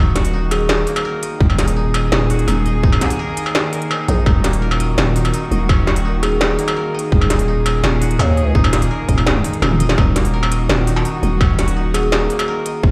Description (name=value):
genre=half-time drum and bass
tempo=168 BPM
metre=4/4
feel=half-time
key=Eb minor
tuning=A4 = 440 Hz
part: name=rich chamber cello section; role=sustained chords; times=0.0-12.9 s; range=Eb3 to Bb4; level=-28 LUFS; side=equal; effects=sidechain pumping
part: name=koto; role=arpeggios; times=0.0-12.9 s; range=Eb3 to Eb5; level=-29 LUFS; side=equal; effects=delay
part: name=growling 808-style bass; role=bass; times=0.0-12.9 s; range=Eb1 to Eb2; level=-19 LUFS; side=equal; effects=none
part: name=industrial drum kit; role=drums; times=0.2-12.7 s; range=hi-hat, snare drum, struck metal, toms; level=-22 LUFS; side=equal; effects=none
part: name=kalimba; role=melody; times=0.5-0.7, 6.2-6.4, 11.9-12.1 s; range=Ab4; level=-28 LUFS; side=equal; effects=delay
part: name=electronic kick drum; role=drums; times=1.4-12.9 s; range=none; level=-16 LUFS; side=equal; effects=overdrive
room=little or no reverb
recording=played on a big sound system in a bare room, large studio reverb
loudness=-17 LUFS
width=mono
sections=0.0-12.9 A section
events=drum fill 9.6-10.0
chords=0.0 Ebm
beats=0.34 0.69 1.05 | 1.41 1.76 2.12 2.48 | 2.84 3.19 3.55 3.91 | 4.26 4.62 4.98 5.34 | 5.69 6.05 6.41 6.76 | 7.12 7.48 7.84 8.19 | 8.55 8.91 9.26 9.62 | 9.98 10.34 10.69 11.05 | 11.41 11.76 12.12 12.48 | 12.84